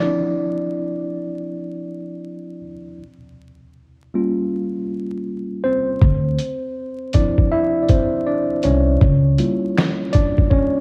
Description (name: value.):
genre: lo-fi hip hop.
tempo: 80 BPM.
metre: 4/4.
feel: swing 63% on 16ths.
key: D minor.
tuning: A4 = 440 Hz.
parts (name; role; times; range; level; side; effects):
mellow tine electric piano; accompaniment; 0.0-10.8 s; F3 to E5; -23 LUFS; equal; none.
upright bass; bass; 6.0-9.4 s; C2 to D2; -20 LUFS; equal; none.
trip hop sampler-style drum kit; drums; 6.0-10.7 s; finger snaps, hi-hat, kick drum, snare drum; -19 LUFS; equal; none.
room: light reverb.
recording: worn, warbling old tape, cassette tape, vinyl crackle, warbly pitch drift.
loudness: -19 LUFS.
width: mono.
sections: 0.0-10.8 A section.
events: tine electric piano solo 0.0-10.8.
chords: 0.0 Dm9; 3.0 Gm7b5; 6.0 Dm9; 9.0 C#dim7.